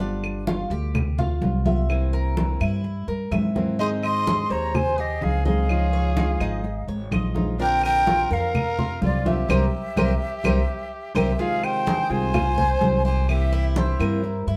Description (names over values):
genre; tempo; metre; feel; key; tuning
latin, Cuban son and guajira; 126 BPM; 4/4; straight; F minor; A4 = 441 Hz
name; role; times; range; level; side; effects
flamenco guitar; accompaniment; 0.0-14.3 s; C3 to Ab4; -32 LUFS; equal; none
Cuban tres; arpeggios; 0.0-14.6 s; D4 to E5; -32 LUFS; equal; none
upright bass; bass; 0.0-14.6 s; G1 to Ab2; -27 LUFS; equal; none
congas; percussion; 0.0-14.6 s; none; -29 LUFS; equal; none
claves; percussion; 0.2-14.2 s; none; -36 LUFS; equal; none
breathy jazz flute; melody; 3.8-14.5 s; C5 to C6; -28 LUFS; equal; none
growling trumpet; second line; 3.8-14.5 s; E4 to Eb5; -36 LUFS; equal; none
room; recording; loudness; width
moderate studio reverb, RT60 0.9 s; band playing live in one room; -23 LUFS; mono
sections
0.0-11.4 A section; 11.4-14.6 B section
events
band accent 9.5-11.4; drum fill 10.4-11.4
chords
0.0 G7; 1.9 C7; 3.8 Ab; 5.7 Dbadd9; 7.6 Bbadd9; 9.5 C7; 11.4 Fm7; 13.3 C7